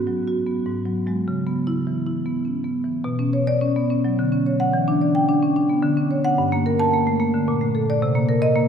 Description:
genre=classical, contemporary piece for solo marimba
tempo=98-112 BPM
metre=3/4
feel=rubato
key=C# minor, B minor from 3.0 s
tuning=A4 = 440 Hz
part: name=marimba with medium mallets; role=solo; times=0.0-8.7 s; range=G2 to A5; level=-19 LUFS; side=equal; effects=none
room=wet cathedral reverb, RT60 4.7 s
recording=recorded in a church or concert hall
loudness=-19 LUFS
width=side -7 dB against mid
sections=0.0-3.0 A section; 3.0-8.7 B section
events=none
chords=0.0 G#m7; 0.7 F#sus2/G#; 1.3 C#m7; 3.0 Bmadd9; 4.2 Dmaj7; 4.7 Em7; 5.8 Dmaj7; 6.4 Gmadd9; 7.5 A#maj7; 8.0 Cm7

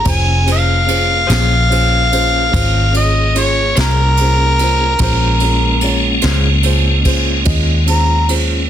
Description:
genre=slow blues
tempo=49 BPM (dotted quarters)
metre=12/8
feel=straight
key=Bb minor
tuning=A4 = 440 Hz
part: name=mellow harmonica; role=melody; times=0.0-8.3 s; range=Bb4 to Bb5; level=-16 LUFS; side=left 1 dB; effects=overdrive
part: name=dark upright piano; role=accompaniment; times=0.0-8.7 s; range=Db4 to C6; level=-23 LUFS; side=right 2 dB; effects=none
part: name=tonewheel organ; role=sustained chords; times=0.0-8.7 s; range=Ab3 to Ab4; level=-20 LUFS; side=equal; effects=slow rotary speaker, overdrive, chorus vibrato
part: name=vintage muted fingered electric bass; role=bass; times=0.0-8.7 s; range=F1 to Eb2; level=-14 LUFS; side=equal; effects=none
part: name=jazz brush drum kit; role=drums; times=0.1-8.5 s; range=kick drum, ride cymbal, snare drum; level=-20 LUFS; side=right 2 dB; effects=none
part: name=electric guitar through a small old amp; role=accompaniment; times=1.3-6.5 s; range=Bb3 to C5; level=-24 LUFS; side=left 8 dB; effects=harmonic tremolo
room=light reverb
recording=dense, heavily limited modern master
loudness=-11 LUFS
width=side -10 dB against mid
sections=0.0-8.7 A section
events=harmonica solo 0.0-8.7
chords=0.0 Bbm9

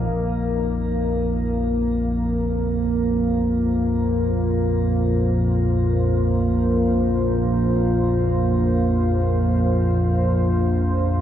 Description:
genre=dark ambient drone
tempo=free time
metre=none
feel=none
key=unclear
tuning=A4 = 440 Hz
part: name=deep dark ambient pad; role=sustained chords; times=0.0-11.2 s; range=Bb3 to F5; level=-22 LUFS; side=equal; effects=chorus, built-in reverb, shimmer reverb
part: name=analog drone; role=drone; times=0.0-11.2 s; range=Bb1 to F2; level=-21 LUFS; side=equal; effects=chorus
room=wet cathedral reverb, RT60 6.9 s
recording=none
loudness=-18 LUFS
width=side -10 dB against mid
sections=0.1-11.2 A section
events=filter sweep on synth drone 0.1-11.2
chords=0.1 Ebsus2/Bb

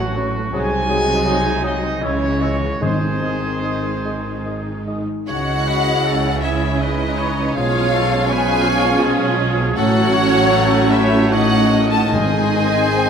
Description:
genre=classical, slow romantic movement for symphony orchestra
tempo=70-86 BPM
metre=3/4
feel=rubato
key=C# minor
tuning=A4 = 442 Hz
part: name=rich symphonic violin section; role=melody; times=0.0-13.1 s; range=C#4 to A5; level=-24 LUFS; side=left 4 dB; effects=none
part: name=clear oboe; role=second line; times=0.0-13.1 s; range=D#4 to C#5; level=-27 LUFS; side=right 2 dB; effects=none
part: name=warm symphonic violin section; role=second line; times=0.0-13.1 s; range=G#3 to A4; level=-27 LUFS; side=left 2 dB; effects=none
part: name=warm symphonic viola section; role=accompaniment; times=0.0-13.1 s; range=D#3 to F#4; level=-24 LUFS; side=right 2 dB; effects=none
part: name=dark French horn section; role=sustained chords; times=0.0-13.1 s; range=B#3 to G#4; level=-26 LUFS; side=left 2 dB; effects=none
part: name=concert harp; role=arpeggios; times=0.0-13.1 s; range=G#2 to C#6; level=-28 LUFS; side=left 9 dB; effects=none
part: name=bright trumpet section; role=stabs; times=0.0-13.1 s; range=B#4 to G#5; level=-26 LUFS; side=right 2 dB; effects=none
part: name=rich studio double bass section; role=bass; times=0.0-13.1 s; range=G#1 to C#2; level=-24 LUFS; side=right 3 dB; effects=none
part: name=rich symphonic cello section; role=bass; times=0.0-13.1 s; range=G#2 to C#3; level=-24 LUFS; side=right 2 dB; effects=none
part: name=mellow flute section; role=second line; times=0.2-13.1 s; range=B4 to E6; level=-26 LUFS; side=equal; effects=none
part: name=mellow bassoon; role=accompaniment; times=0.2-5.0, 13.0-13.1 s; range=F#3 to B#3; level=-30 LUFS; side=right 1 dB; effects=none
part: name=timpani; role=percussion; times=2.8-4.0, 12.1-13.1 s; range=G#2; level=-24 LUFS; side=equal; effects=none
part: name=clear trombone section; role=sustained chords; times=5.3-13.1 s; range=D#3 to A3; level=-26 LUFS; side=right 3 dB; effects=none
room=moderate recital hall reverb, RT60 1.6 s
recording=none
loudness=-15 LUFS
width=side -7 dB against mid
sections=0.0-5.3 A section; 5.3-13.1 B section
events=none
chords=0.0 F#m/A; 0.5 G#7/B#; 2.0 C#m; 2.8 G#; 5.3 C#m; 7.6 C#7/B; 9.8 F#m/A; 11.3 D#m7b5/A; 12.1 G#

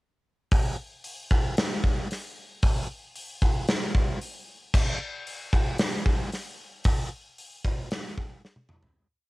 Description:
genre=rock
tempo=114 BPM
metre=4/4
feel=straight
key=none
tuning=none
part: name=gated 80s drum kit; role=drums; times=0.5-9.0 s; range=crash cymbal, hi-hat, kick drum, snare drum, toms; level=-25 LUFS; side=equal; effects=cassette tape
room=little or no reverb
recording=home recording on cassette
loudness=-25 LUFS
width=side -21 dB against mid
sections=0.5-9.0 riff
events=fade-out 6.9-9.0; drum fill 8.4-9.0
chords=none

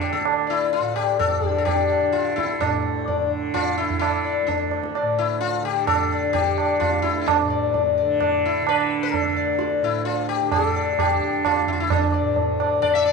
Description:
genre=indian classical, Hindustani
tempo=129 BPM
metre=5/4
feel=straight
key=D raga kafi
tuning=A4 = 440 Hz
part: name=sitar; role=melody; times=0.0-13.1 s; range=D4 to E5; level=-22 LUFS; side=left 9 dB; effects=none
part: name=tanpura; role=drone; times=0.0-13.1 s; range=D2 to D3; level=-26 LUFS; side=right 4 dB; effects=none
part: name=tabla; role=percussion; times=0.0-13.0 s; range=none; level=-24 LUFS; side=right 8 dB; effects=none
room=moderate plate reverb, RT60 2.7 s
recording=1960s-style stereo with parts hard left and right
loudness=-19 LUFS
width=side -4 dB against mid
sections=0.0-2.6 A section; 2.6-13.1 B section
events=none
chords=none

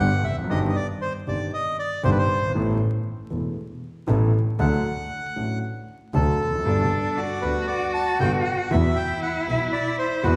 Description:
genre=tango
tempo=117 BPM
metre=4/4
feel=rubato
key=G major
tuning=A4 = 440 Hz
part: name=bandoneon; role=melody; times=0.0-10.4 s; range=A4 to A5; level=-29 LUFS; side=equal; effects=none
part: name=dark concert grand piano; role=accompaniment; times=0.0-10.4 s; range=E1 to A4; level=-29 LUFS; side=equal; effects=none
part: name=rich double bass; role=bass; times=0.0-10.4 s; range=E1 to E2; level=-28 LUFS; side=equal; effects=none
part: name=rich cello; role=second line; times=6.7-10.4 s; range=D4 to F#4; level=-28 LUFS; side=equal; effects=none
room=wet recital hall reverb, RT60 1.7 s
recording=recorded in a church or concert hall, vinyl crackle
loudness=-24 LUFS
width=mono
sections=0.0-10.4 A section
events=none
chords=0.0 G; 0.5 Cmadd9/G; 2.5 Asus2; 4.6 D; 6.7 Gadd9; 8.7 Esus2

